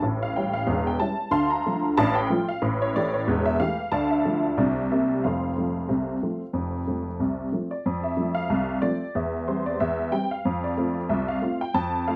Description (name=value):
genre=ragtime piano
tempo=92 BPM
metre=2/4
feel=swing 57% on 16ths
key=F major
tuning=A4 = 440 Hz
part: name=honky-tonk upright piano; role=solo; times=0.0-12.2 s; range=E1 to C6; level=-25 LUFS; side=equal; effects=none
room=light reverb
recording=dark, warm production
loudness=-25 LUFS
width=mono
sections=0.0-7.8 A section; 7.8-12.2 B section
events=none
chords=0.0 A7; 1.3 Dm; 2.6 A5; 3.9 Dm; 4.6 C7; 5.2 F; 9.2 C/E; 10.5 F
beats=| 0.02 0.67 | 1.32 1.97 | 2.62 3.27 | 3.92 4.57 | 5.23 5.88 | 6.54 7.20 | 7.85 8.50 | 9.15 9.80 | 10.45 11.11 | 11.76